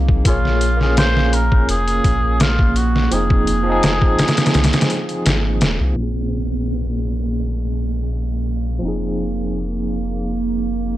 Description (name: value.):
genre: trip hop.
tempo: 84 BPM.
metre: 4/4.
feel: straight.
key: Bb minor.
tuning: A4 = 440 Hz.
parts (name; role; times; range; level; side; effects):
barky tine electric piano; accompaniment; 0.0-11.0 s; Bb2 to F5; -24 LUFS; equal; tremolo, vintage 12-bit sampler grit, low-pass filter, tape echo.
warbly tape-like pad; sustained chords; 0.0-11.0 s; Bb3; -26 LUFS; right 6 dB; chorus, built-in reverb.
round analog bass; bass; 0.0-11.0 s; Eb1 to C2; -20 LUFS; equal; none.
trip hop sampler-style drum kit; drums; 0.1-5.8 s; hi-hat, kick drum, snare drum; -17 LUFS; equal; vintage 12-bit sampler grit, small room ambience.
trumpet with cup mute; melody; 0.3-5.3 s; F4 to C5; -22 LUFS; equal; dub echo.
downlifter; sound effects; 6.0-11.0 s; none; -31 LUFS; right 1 dB; none.
room: little or no reverb.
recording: dry, gritty hardware recording, low-pass filter.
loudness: -16 LUFS.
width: side -14 dB against mid.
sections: 0.0-6.0 A section; 6.0-11.0 B section.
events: filter sweep on tine electric piano 6.0-11.0; filter sweep 6.0-11.0.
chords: 0.3 Bbm7; 3.1 Fm7; 6.0 Bbm7; 8.8 Fm7.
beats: | 0.26 0.97 1.69 2.40 | 3.11 3.83 4.54 5.26 | 5.97 6.68 7.40 8.11 | 8.83 9.54 10.26 10.97.